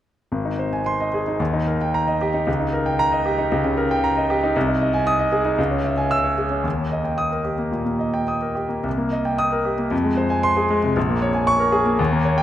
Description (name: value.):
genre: classical, virtuoso piano study.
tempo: 107-118 BPM.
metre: 4/4.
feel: rubato.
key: unclear.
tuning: A4 = 441 Hz.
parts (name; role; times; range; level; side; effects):
clear grand piano; solo; 0.3-12.4 s; Ab1 to Fb6; -18 LUFS; equal; none.
room: wet concert hall reverb, RT60 2.1 s.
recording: none.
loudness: -18 LUFS.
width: side -12 dB against mid.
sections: 0.3-12.4 A section.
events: none.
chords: 0.3 Ab; 1.4 Eb; 2.5 Eb7/Db; 4.6 Ab/C; 5.6 Dbm; 6.6 Eb; 8.9 Cm7; 9.9 Fm; 11.0 Bbm7.